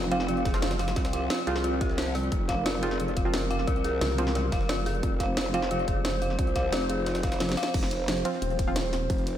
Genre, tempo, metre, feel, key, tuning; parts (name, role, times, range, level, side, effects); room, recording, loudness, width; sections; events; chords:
dark technical drum and bass; 177 BPM; 4/4; straight; A4 = 443 Hz
dark analog pad; sustained chords; 0.0-9.4 s; F3 to C5; -33 LUFS; right 1 dB; wide subtle chorus, sidechain pumping
dark detuned synth bell; arpeggios; 0.0-7.6 s; F4 to F5; -32 LUFS; left 1 dB; chorus, tremolo, sidechain pumping, ping-pong delay
filtered dub chord stab; stabs; 0.0-5.6, 8.3-8.8 s; F3 to F4; -34 LUFS; right 2 dB; chorus, ping-pong delay
growl bass; bass; 0.0-9.4 s; F1 to C2; -30 LUFS; equal; chorus, tube saturation, sidechain pumping
jungle sampler-style drum kit; drums; 0.0-9.3 s; hi-hat, snare drum; -41 LUFS; equal
drum and bass drum kit; drums; 0.1-9.3 s; crash cymbal, hi-hat, ride cymbal, snare drum; -33 LUFS; equal; studio reverb
vowel-sweep wobble bass; bass; 0.5-0.9, 3.2-6.4, 8.4-9.1 s; Eb1 to C2; -30 LUFS; equal; chorus
electronic kick drum; drums; 0.5-9.2 s; -30 LUFS; equal; studio reverb
moderate lush hall reverb, RT60 1.9 s, digital ambience; dreamy mix soaked in reverb; -25 LUFS; side -10 dB against mid
0.0-7.7 A section; 7.7-9.4 A section
drop 0.0-7.7, 7.7-9.4; kick drops out 7.4-7.7; drum fill 7.4-7.7
0.0 F5